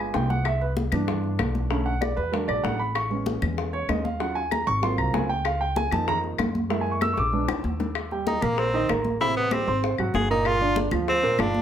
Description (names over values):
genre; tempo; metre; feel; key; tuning
Afro-Cuban jazz; 192 BPM; 4/4; straight; Eb major from 8.0 s; A4 = 440 Hz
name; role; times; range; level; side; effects
warm grand piano; accompaniment; 0.0-11.6 s; Bb2 to Fb6; -26 LUFS; right 3 dB; none
upright bass; bass; 0.0-11.6 s; G1 to G2; -29 LUFS; equal; none
bongos; percussion; 0.1-11.6 s; none; -31 LUFS; left 6 dB; none
congas; percussion; 0.1-11.6 s; none; -32 LUFS; left 1 dB; none
claves; percussion; 0.5-11.5 s; none; -34 LUFS; left 10 dB; none
edgy tenor saxophone; melody; 8.3-11.6 s; Bb3 to Ab4; -25 LUFS; equal; plate reverb
room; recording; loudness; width
moderate studio reverb, RT60 0.7 s; none; -22 LUFS; side -9 dB against mid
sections
0.0-8.0 A section; 8.0-11.6 A section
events
grand piano solo 0.0-8.0; drum fill 7.2-8.0; tenor saxophone solo 8.0-11.6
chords
0.5 Cmaj7; 1.7 Bm9; 2.3 E7; 3.0 Amaj9; 4.2 Ebm9; 4.8 Ab13; 5.5 Db6; 6.7 Gb9; 7.3 Bb7b9; 8.0 Eb6; 9.2 Am7; 9.8 Ab9; 10.5 Gm7